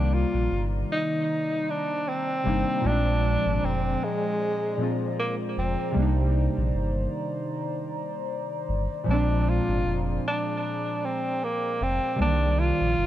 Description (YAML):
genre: lo-fi hip hop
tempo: 77 BPM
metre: 4/4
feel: swing 57% on 16ths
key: unclear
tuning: A4 = 442 Hz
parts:
  - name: breathy tenor saxophone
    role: melody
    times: 0.0-13.1 s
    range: Ab3 to F4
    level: -27 LUFS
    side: equal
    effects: low-pass filter, tape echo
  - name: warm analog keys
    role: accompaniment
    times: 0.0-13.1 s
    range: Bb2 to D5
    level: -29 LUFS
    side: equal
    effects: chorus, low-pass filter, tape echo
  - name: warbly tape-like pad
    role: sustained chords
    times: 0.0-13.1 s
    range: Eb3 to Bb5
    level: -35 LUFS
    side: left 1 dB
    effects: chorus, built-in reverb, phaser, low-pass filter
  - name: sub bass with octave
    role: bass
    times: 0.0-13.1 s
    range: F1 to C2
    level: -25 LUFS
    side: equal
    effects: none
room: little or no reverb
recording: echo-heavy mix, cassette tape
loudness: -24 LUFS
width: side -12 dB against mid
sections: 0.0-13.1 A section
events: none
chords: 0.0 Cm9; 2.8 Bb9; 6.0 Cm9; 9.1 Bb9; 12.2 Cm9